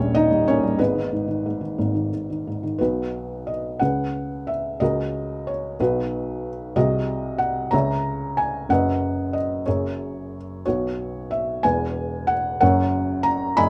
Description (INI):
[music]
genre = classical, lyrical solo piano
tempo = 61 BPM (dotted quarters)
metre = 6/8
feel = rubato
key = B major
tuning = A4 = 440 Hz
[part]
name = felt-muted upright piano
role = solo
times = 0.0-13.7 s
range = D#1 to B5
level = -23 LUFS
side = equal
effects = none
[sound]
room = light reverb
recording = close, detailed microphones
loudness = -23 LUFS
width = mono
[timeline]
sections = 0.0-2.8 A section; 2.8-13.7 B section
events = none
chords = 0.0 D#7; 0.8 G#m; 2.8 B; 3.8 C#7sus4; 4.8 F#/C#; 5.8 B; 6.8 G#7/B#; 7.7 C#m; 8.7 B/F#; 9.7 F#add9; 10.6 Bsus2; 11.6 E; 12.6 F#